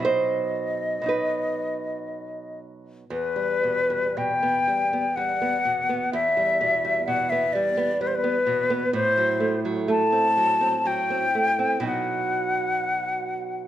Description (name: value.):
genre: romantic duo for flute and classical guitar.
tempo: 54-65 BPM.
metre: 3/4.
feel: rubato.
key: E minor.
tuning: A4 = 440 Hz.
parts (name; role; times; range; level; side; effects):
mellow hollow silver concert flute; melody; 0.0-13.7 s; B4 to A5; -23 LUFS; left 2 dB; none.
nylon-string guitar; accompaniment; 0.0-13.7 s; E2 to C5; -27 LUFS; right 4 dB; none.
room: moderate recital hall reverb, RT60 1.6 s.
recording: none.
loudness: -21 LUFS.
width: side -12 dB against mid.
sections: 0.0-3.1 A section; 3.1-13.7 B section.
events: none.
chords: 0.1 B; 3.1 Em; 8.9 F#dim/A; 11.8 B.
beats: | 0.06 1.09 2.11 | 3.10 4.17 5.17 | 6.13 7.08 8.00 | 8.93 9.87 10.85 | 11.85 12.87.